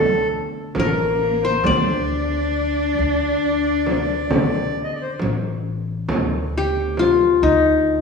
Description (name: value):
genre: Arabic maqam ensemble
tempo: 135 BPM (eighths)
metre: 10/8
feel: straight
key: D maqam kurd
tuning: A4 = 441 Hz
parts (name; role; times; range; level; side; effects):
- qanun; melody; 0.0-8.0 s; Eb4 to D5; -18 LUFS; left 4 dB; none
- accordion; second line; 0.0-5.2 s; A4 to Eb5; -24 LUFS; left 2 dB; none
- dark cello; second line; 0.0-5.2 s; A3 to D4; -24 LUFS; left 1 dB; none
- upright bass; bass; 0.0-8.0 s; A1 to D3; -26 LUFS; equal; none
- frame drum; percussion; 0.7-7.2 s; none; -24 LUFS; right 2 dB; none
- clear double bass; drone; 6.1-8.0 s; D2; -30 LUFS; right 1 dB; none
room: wet recital hall reverb, RT60 1.6 s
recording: recorded in a church or concert hall, studio ambience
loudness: -17 LUFS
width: side -5 dB against mid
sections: 0.0-6.1 A section; 6.1-8.0 B section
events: none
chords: none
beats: 0.31 0.75 1.20 | 1.64 2.09 2.53 2.98 3.42 3.87 4.31 4.75 5.20 5.64 | 6.09 6.54 6.98 7.43 7.87